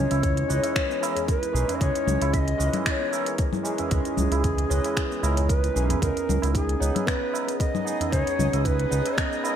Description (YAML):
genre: organic downtempo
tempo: 114 BPM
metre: 4/4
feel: swing 53% on 16ths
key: C# dorian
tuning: A4 = 440 Hz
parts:
  - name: mellow hollow Native American-style cedar flute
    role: melody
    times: 0.0-9.6 s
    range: G#4 to E5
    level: -28 LUFS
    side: left 2 dB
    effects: ping-pong delay
  - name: barky tine electric piano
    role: accompaniment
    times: 0.0-9.6 s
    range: E3 to D#5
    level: -32 LUFS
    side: right 1 dB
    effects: analog chorus, sidechain pumping, ping-pong delay
  - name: steel tongue drum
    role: arpeggios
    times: 0.0-9.4 s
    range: B3 to C#5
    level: -31 LUFS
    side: right 5 dB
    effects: none
  - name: smooth synth bass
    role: bass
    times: 0.0-9.0 s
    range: B1 to C#2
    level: -24 LUFS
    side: equal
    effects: sidechain pumping
  - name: organic electronic drum kit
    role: drums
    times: 0.1-9.6 s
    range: congas, finger snaps, hi-hat, shaker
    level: -30 LUFS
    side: left 3 dB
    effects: small room ambience, gated reverb
  - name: tabla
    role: percussion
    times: 0.1-9.6 s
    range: none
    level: -35 LUFS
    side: right 4 dB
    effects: none
  - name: electronic kick drum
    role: drums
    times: 0.2-9.3 s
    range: none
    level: -26 LUFS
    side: equal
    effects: small room ambience
  - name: granular cloud pad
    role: sustained chords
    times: 7.4-9.6 s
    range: G#4 to D#6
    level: -37 LUFS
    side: left 1 dB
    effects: built-in reverb, wide subtle chorus, sidechain pumping
room: moderate plate reverb, RT60 2.6 s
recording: bright 1980s-style digital production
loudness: -22 LUFS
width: side -9 dB against mid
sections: 0.0-9.6 A section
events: none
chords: 0.0 C#madd9; 6.0 G#m